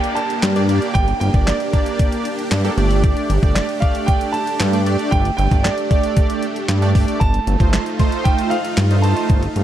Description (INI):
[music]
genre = dance-pop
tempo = 115 BPM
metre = 4/4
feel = straight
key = G minor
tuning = A4 = 440 Hz
[part]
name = clear concert grand piano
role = melody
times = 0.0-9.5 s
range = D5 to A5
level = -24 LUFS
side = right 3 dB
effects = ping-pong delay
[part]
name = big bright polysynth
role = accompaniment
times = 0.0-9.4 s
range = A3 to D5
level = -23 LUFS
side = right 3 dB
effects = chorus, sidechain pumping
[part]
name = supersaw pad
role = sustained chords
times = 0.0-9.6 s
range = A3 to G4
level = -26 LUFS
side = equal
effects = sidechain pumping
[part]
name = detuned 8-bit digital drum machine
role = drums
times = 0.0-9.6 s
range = handclaps, hi-hat, kick drum, snare drum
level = -18 LUFS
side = equal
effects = none
[part]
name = downlifter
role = sound effects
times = 0.0-3.0 s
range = none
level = -34 LUFS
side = equal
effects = none
[part]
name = chorused synth bass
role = bass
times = 0.4-9.6 s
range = G1 to G2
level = -17 LUFS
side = equal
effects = sidechain pumping
[sound]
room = little or no reverb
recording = dark, warm production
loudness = -15 LUFS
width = side -11 dB against mid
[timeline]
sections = 0.0-9.6 A section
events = none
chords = 0.0 Gm; 2.8 Dsus4/G; 7.2 F7/G